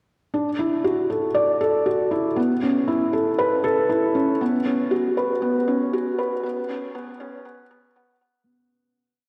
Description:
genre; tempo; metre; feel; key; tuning
electronica; 118 BPM; 4/4; straight; unclear; A4 = 440 Hz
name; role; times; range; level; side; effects
felt-muted upright piano; solo; 0.3-8.5 s; B3 to D5; -22 LUFS; equal; none
room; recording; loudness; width
wet concert hall reverb, RT60 2.5 s; high-pass filter; -22 LUFS; mono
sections
0.3-8.5 build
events
build-up 0.3-8.5; filter sweep 0.3-8.5; fade-out 5.8-8.5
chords
none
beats
| 0.34 0.85 1.36 1.87 | 2.38 2.88 3.39 3.90 | 4.41 4.92 5.43 5.93 | 6.44 6.95 7.46 7.97

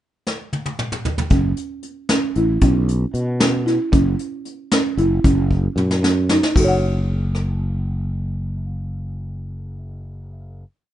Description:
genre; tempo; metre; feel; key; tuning
progressive instrumental, band music in an uneven meter; 229 BPM (eighths); 5/8; straight; F# minor; A4 = 440 Hz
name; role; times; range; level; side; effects
soft brush drum kit; drums; 0.3-7.5 s; crash cymbal, hi-hat, kick drum, rim click, snare drum, toms; -20 LUFS; left 1 dB; none
buzzing marimba with soft mallets; arpeggios; 1.3-10.7 s; C#4 to F#5; -20 LUFS; right 2 dB; none
sustaining fretless electric bass; bass; 1.3-10.6 s; F#1 to B2; -20 LUFS; equal; none
room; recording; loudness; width
light reverb; rough home demo mix, nothing above 10.5 kHz; -17 LUFS; side -12 dB against mid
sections
0.0-1.3 pickup bar; 1.3-6.5 A section; 6.5-9.2 final chord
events
drum fill 0.3-1.3, 5.5-6.5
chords
0.0 N.C.; 1.3 F#m7; 2.6 Bsus2; 3.9 F#5; 6.5 F#m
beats
0.26 0.52 0.78 1.04 | 1.30 1.57 1.83 2.09 2.35 | 2.62 2.88 3.14 3.40 3.67 | 3.93 4.19 4.45 4.71 4.98 | 5.24 5.50 5.76 6.02 6.29 | 6.55 6.81 7.07 7.33 7.60 | 7.86 8.12 8.38 8.64 8.90

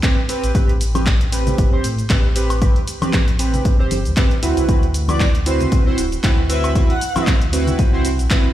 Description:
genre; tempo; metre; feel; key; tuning
deep house; 116 BPM; 4/4; swing 56% on 16ths; A dorian; A4 = 441 Hz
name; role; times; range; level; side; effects
chorused polysynth; stabs; 0.0-8.5 s; C4 to C5; -22 LUFS; right 2 dB; tape echo
electronic kick drum; drums; 0.0-8.4 s; none; -16 LUFS; equal; none
punchy analog drum machine; drums; 0.0-8.4 s; handclaps, hi-hat, shaker, woodblock; -25 LUFS; equal; none
sub bass with octave; bass; 0.4-8.3 s; D1 to A2; -20 LUFS; equal; sidechain pumping
congas; percussion; 0.9-7.8 s; none; -26 LUFS; left 2 dB; none
airy dreamy lead; melody; 5.1-7.3 s; C5 to F#5; -26 LUFS; left 1 dB; chorus, ping-pong delay
room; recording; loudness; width
little or no reverb; played on a big sound system in a bare room, stone room reverb; -15 LUFS; side -13 dB against mid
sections
0.0-8.5 A section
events
none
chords
0.0 Am7; 4.4 D13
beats
0.03 | 0.55 1.07 1.58 2.10 | 2.62 3.13 3.65 4.17 | 4.69 5.20 5.72 6.24 | 6.75 7.27 7.79 8.31

